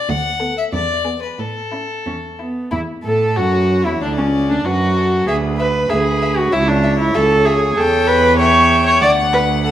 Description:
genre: quick classical-period movement for string quartet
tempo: 96 BPM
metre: 2/4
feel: rubato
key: A major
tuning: A4 = 440 Hz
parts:
  - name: rich violin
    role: melody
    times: 0.0-9.7 s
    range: A4 to F#5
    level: -23 LUFS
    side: left 7 dB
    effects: none
  - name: rich cello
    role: bass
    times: 0.1-9.7 s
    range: C#2 to A2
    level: -19 LUFS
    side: right 3 dB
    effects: none
  - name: rich violin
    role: second line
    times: 0.4-9.7 s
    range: C#4 to G5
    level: -22 LUFS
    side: left 3 dB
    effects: none
  - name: rich viola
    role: accompaniment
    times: 0.4-9.7 s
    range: B3 to D5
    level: -16 LUFS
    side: right 1 dB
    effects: none
room: wet recital hall reverb, RT60 1.2 s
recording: none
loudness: -13 LUFS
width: side -11 dB against mid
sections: 0.0-2.7 A section; 2.7-9.7 B section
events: none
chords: 0.1 Bm7/D; 0.7 E7; 1.4 A; 4.0 D; 5.3 E5/D; 6.5 C#m; 7.8 Em6; 9.0 D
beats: | 0.09 0.73 | 1.39 2.06 | 2.73 3.38 | 4.02 4.65 | 5.28 5.90 | 6.53 7.15 | 7.77 8.39 | 9.01 9.64

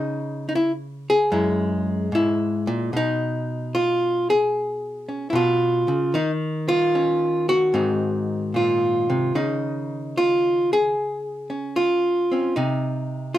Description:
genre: solo jazz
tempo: 75 BPM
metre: 4/4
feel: swing 68% on 8ths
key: unclear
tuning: A4 = 443 Hz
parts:
  - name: archtop guitar, miked and amplified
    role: solo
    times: 0.0-13.4 s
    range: Gb2 to Ab4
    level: -20 LUFS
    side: equal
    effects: none
room: light reverb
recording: minimal, uncompressed stereo recording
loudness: -20 LUFS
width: side -13 dB against mid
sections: 0.0-13.4 A section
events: none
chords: 0.0 N.C.; 1.3 Gb9; 2.9 Badd9; 6.1 Ebsus2; 7.7 Ab13; 9.3 Db; 12.5 Cm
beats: 0.52 1.32 2.13 | 2.93 3.73 4.53 5.33 | 6.14 6.94 7.74 8.54 | 9.34 10.14 10.94 11.74 | 12.54 13.34

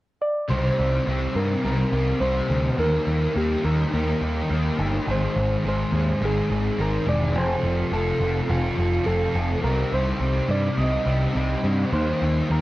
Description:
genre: rock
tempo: 105 BPM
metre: 4/4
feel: straight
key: C minor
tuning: A4 = 441 Hz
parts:
  - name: soft struck synth lead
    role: melody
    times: 0.2-12.6 s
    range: F4 to Eb5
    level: -27 LUFS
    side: equal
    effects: chorus, cassette tape, tape echo
  - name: raw garage guitar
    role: riff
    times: 0.5-12.6 s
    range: Ab2 to A4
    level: -30 LUFS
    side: right 6 dB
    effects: overdrive, reverse reverb, cassette tape
  - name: thick fuzz guitar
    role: riff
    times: 0.5-12.6 s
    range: F2 to Eb4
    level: -26 LUFS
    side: left 3 dB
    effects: distortion, ensemble chorus, cassette tape
  - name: growling picked electric bass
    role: bass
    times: 0.5-12.6 s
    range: E1 to G2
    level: -24 LUFS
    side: equal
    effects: overdrive
room: light reverb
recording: home recording on cassette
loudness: -20 LUFS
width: side -17 dB against mid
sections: 0.5-12.6 A section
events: none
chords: 0.5 Cm7; 2.8 Eb; 5.1 Ab; 7.4 F; 9.6 Cm; 11.9 Eb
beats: | 0.50 1.07 1.64 2.21 | 2.78 3.36 3.93 4.50 | 5.07 5.64 6.21 6.78 | 7.36 7.93 8.50 9.07 | 9.64 10.21 10.78 11.35 | 11.93 12.50

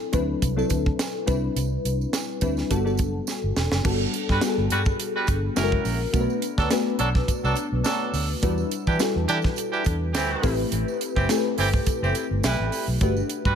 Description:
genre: polished 1980s jazz-funk pop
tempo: 105 BPM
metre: 4/4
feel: swing 54% on 16ths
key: unclear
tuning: A4 = 440 Hz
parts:
  - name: bell-like FM electric piano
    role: accompaniment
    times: 0.0-13.6 s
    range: F#3 to B4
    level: -26 LUFS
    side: left 3 dB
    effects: analog chorus
  - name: vintage muted fingered electric bass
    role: bass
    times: 0.1-13.5 s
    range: E1 to E3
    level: -26 LUFS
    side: right 1 dB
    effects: none
  - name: tight funk drum kit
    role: drums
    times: 0.1-13.6 s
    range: crash cymbal, hi-hat, kick drum, snare drum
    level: -26 LUFS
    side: right 1 dB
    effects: none
  - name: tambourine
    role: percussion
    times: 0.1-13.6 s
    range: none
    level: -40 LUFS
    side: right 14 dB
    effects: none
  - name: clear horn section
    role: second line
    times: 4.3-13.6 s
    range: E3 to B4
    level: -28 LUFS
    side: right 3 dB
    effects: tape echo
room: studio reverb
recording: none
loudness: -21 LUFS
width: side -8 dB against mid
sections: 0.0-3.9 A section; 3.9-13.6 B section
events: drum fill 3.3-3.9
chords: 0.0 D9; 1.3 Cmaj9; 2.7 Gmaj9; 3.9 Gmaj7; 5.6 F#7; 6.1 Bm7; 8.4 Em7; 10.4 Am9; 13.0 Gmaj7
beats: 0.42 0.99 | 1.57 2.14 2.71 3.28 | 3.85 4.43 5.00 5.57 | 6.14 6.71 7.29 7.86 | 8.43 9.00 9.57 10.15 | 10.72 11.29 11.87 12.44 | 13.01

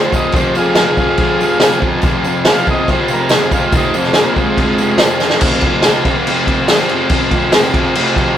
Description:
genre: garage rock duo or trio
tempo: 142 BPM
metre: 4/4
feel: straight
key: F minor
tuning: A4 = 444 Hz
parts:
  - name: overdriven combo organ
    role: melody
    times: 0.0-5.0 s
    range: G3 to F5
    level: -18 LUFS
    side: equal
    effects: none
  - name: combo organ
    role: sustained chords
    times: 0.0-8.4 s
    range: F4 to Ab5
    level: -22 LUFS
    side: right 1 dB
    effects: none
  - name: thick fuzz guitar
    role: riff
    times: 0.0-8.4 s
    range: F2 to F3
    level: -16 LUFS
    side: equal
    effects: distortion
  - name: vintage drum kit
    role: drums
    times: 0.1-8.3 s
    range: crash cymbal, kick drum, snare drum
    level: -14 LUFS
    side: equal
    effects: none
  - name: tambourine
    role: percussion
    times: 0.1-7.6 s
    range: none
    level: -32 LUFS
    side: right 7 dB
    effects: none
room: moderate stone room reverb, RT60 1.0 s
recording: rough rehearsal-room recording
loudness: -11 LUFS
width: side -10 dB against mid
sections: 0.0-5.4 A section; 5.4-8.4 B section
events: transistor combo organ solo 0.0-5.4; transistor combo organ fill 1.2-2.0; drum fill 5.2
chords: 0.0 Fm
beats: | 0.35 0.77 1.20 1.62 | 2.04 2.47 2.89 3.31 | 3.74 4.16 4.58 5.00 | 5.43 5.85 6.27 6.69 | 7.11 7.54 7.96

